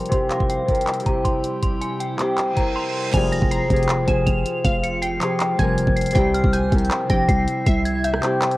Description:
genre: hip hop, trap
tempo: 159 BPM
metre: 4/4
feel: half-time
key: F harmonic minor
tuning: A4 = 438 Hz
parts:
  - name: metallic FM bell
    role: melody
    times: 0.0-8.4 s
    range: F5 to F7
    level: -29 LUFS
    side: equal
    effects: chorus, phaser, low-pass filter, cassette tape
  - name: Celtic harp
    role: accompaniment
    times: 0.0-8.6 s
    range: C3 to Bb4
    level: -22 LUFS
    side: left 1 dB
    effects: low-pass filter
  - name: airy breathy pad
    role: sustained chords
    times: 0.0-8.6 s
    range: C3 to G4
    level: -30 LUFS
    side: right 1 dB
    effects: chorus, low-pass filter
  - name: downlifter and reverse cymbal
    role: sound effects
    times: 0.0-0.1, 2.5-3.1 s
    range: none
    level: -31 LUFS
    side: right 5 dB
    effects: none
  - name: trap drum kit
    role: drums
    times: 0.1-8.6 s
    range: crash cymbal, handclaps, hi-hat, kick drum, rim click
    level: -22 LUFS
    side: equal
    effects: cassette tape
  - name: glassy wavetable pluck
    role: second line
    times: 3.1-8.6 s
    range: E5 to Bb5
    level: -30 LUFS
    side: equal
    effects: chorus, analog delay
  - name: mellow brass ensemble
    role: stabs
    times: 3.1-3.4, 6.2-6.4 s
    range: Ab2 to G3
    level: -29 LUFS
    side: left 4 dB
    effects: none
  - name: growling 808-style bass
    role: bass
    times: 3.1-8.2 s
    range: F1 to C2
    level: -22 LUFS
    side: equal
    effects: none
room: little or no reverb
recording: home recording on cassette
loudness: -18 LUFS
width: side -18 dB against mid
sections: 0.0-3.1 A section; 3.1-8.6 B section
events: filter sweep 0.0-3.1; reverse cymbal 2.5-3.1; break 2.8-3.1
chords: 0.1 C; 3.1 Fmadd9; 6.2 C

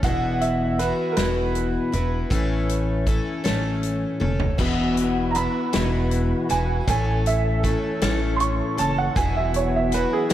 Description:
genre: folk rock and heartland rock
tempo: 53 BPM (dotted quarters)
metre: 6/8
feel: straight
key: unclear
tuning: A4 = 440 Hz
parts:
  - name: clear upright piano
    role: second line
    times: 0.0-10.3 s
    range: G#4 to C#6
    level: -26 LUFS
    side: right 5 dB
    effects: analog delay, slapback echo
  - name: picked twelve-string acoustic guitar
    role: accompaniment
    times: 0.0-10.3 s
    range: E2 to A4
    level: -24 LUFS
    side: left 2 dB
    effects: none
  - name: upright bass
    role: bass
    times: 0.0-10.3 s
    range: E1 to A1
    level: -25 LUFS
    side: equal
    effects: none
  - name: natural country drum kit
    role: drums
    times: 0.0-10.3 s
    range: crash cymbal, hi-hat, kick drum, snare drum, toms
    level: -26 LUFS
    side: equal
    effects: none
  - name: tonewheel organ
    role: sustained chords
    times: 4.6-10.3 s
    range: E3 to B4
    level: -32 LUFS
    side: right 2 dB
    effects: slow rotary speaker, overdrive, chorus vibrato
room: moderate lush hall reverb, RT60 2.6 s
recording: big arena sound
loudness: -20 LUFS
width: side -12 dB against mid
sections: 0.0-4.6 A section; 4.6-10.3 B section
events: drum fill 4.2-4.6; upright piano solo 4.6-10.3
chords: 0.0 Esus2; 2.3 A; 4.6 Esus2; 6.9 A; 9.2 Esus2

